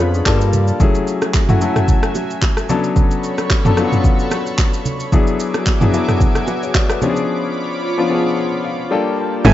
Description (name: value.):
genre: amapiano.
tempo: 111 BPM.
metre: 4/4.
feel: swing 55% on 16ths.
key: F# minor.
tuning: A4 = 440 Hz.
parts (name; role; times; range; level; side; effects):
warm grand piano; accompaniment; 0.0-9.5 s; E#3 to A5; -19 LUFS; left 4 dB; none.
airy breathy pad; sustained chords; 0.0-9.5 s; F#3 to D6; -24 LUFS; right 1 dB; chorus, sidechain pumping.
fat analog bass; bass; 0.0-0.7 s; E#2 to G2; -16 LUFS; equal; none.
deep house drum kit; drums; 0.1-9.5 s; crash cymbal, handclaps, kick drum, rim click, shaker, toms; -16 LUFS; equal; overdrive.
bongos and congas; percussion; 0.3-9.5 s; none; -26 LUFS; right 5 dB; none.
percussive organ stab; stabs; 9.4-9.5 s; A4 to G#5; -14 LUFS; right 7 dB; chorus.
tight log drum bass; bass; 9.4-9.5 s; F#1; -7 LUFS; equal; none.
room: light reverb, digital ambience.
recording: dark, warm production, nothing above 7.7 kHz.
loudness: -14 LUFS.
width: side -13 dB against mid.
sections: 0.0-9.4 A section.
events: break 7.3-9.4; grand piano fill 8.4-9.4.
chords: 0.3 Gm9; 0.8 F#m9; 2.7 Bm9; 5.1 E9; 7.0 C#7b9/E#; 8.9 Gm9.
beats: 0.26 | 0.80 1.34 1.88 2.42 | 2.96 3.50 4.04 4.58 | 5.12 5.67 6.21 6.75 | 7.29 7.83 8.37 8.91 | 9.45.